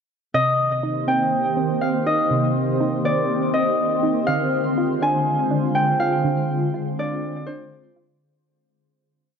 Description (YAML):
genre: hip hop, atmospheric cloud-rap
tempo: 122 BPM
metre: 4/4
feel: half-time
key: C minor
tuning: A4 = 441 Hz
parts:
  - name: Celtic harp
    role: melody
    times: 0.3-9.4 s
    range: C5 to Ab5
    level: -22 LUFS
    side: left 1 dB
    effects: digital delay
  - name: shimmering ambient pad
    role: sustained chords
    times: 0.8-8.2 s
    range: D3 to C5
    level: -23 LUFS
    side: left 1 dB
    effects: chorus, built-in reverb, phaser
  - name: soft round pluck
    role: arpeggios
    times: 0.3-8.2 s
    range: C3 to F4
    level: -26 LUFS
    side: right 4 dB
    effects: chorus, digital delay
room: moderate huge ambient reverb, RT60 5.1 s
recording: worn, warbling old tape, cassette tape, warbly pitch drift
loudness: -19 LUFS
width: side -6 dB against mid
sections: 0.3-8.2 breakdown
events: fade-out 6.2-8.2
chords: 0.3 Cm7; 4.3 Dm7b5